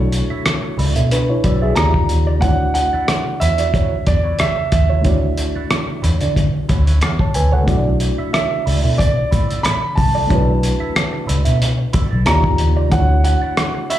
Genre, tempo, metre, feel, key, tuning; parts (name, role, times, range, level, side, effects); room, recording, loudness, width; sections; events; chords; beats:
lush 1970s-style soul; 92 BPM; 4/4; swing 54% on 16ths; B minor; A4 = 440 Hz
warm baby grand piano; melody; 0.0-14.0 s; C#5 to B5; -21 LUFS; right 2 dB; slapback echo
reed electric piano; accompaniment; 0.0-14.0 s; A3 to A5; -24 LUFS; left 1 dB; overdrive, harmonic tremolo, slapback echo
vintage muted fingered electric bass; bass; 0.0-13.5 s; B1 to D3; -16 LUFS; equal
mellow electric guitar; riff; 0.1-14.0 s; E4 to E5; -28 LUFS; right 7 dB; wah, lush chorus, slapback echo
cloth-damped thuddy drum kit; drums; 0.1-14.0 s; hi-hat, kick drum, rim click; -20 LUFS; equal
congas; percussion; 0.5-13.7 s; -28 LUFS; right 4 dB
light reverb; live gig heard through the venue's PA, club reverb; -14 LUFS; side -12 dB against mid
0.0-14.0 A section
0.0 Bm11; 1.8 D#maj9; 2.4 Dmaj9; 7.7 Bm11; 12.3 D#maj9; 12.9 Dmaj9
0.46 1.11 1.77 | 2.43 3.08 3.74 4.39 | 5.05 5.71 6.36 7.02 | 7.68 8.33 8.99 9.64 | 10.30 10.96 11.61 12.27 | 12.92 13.58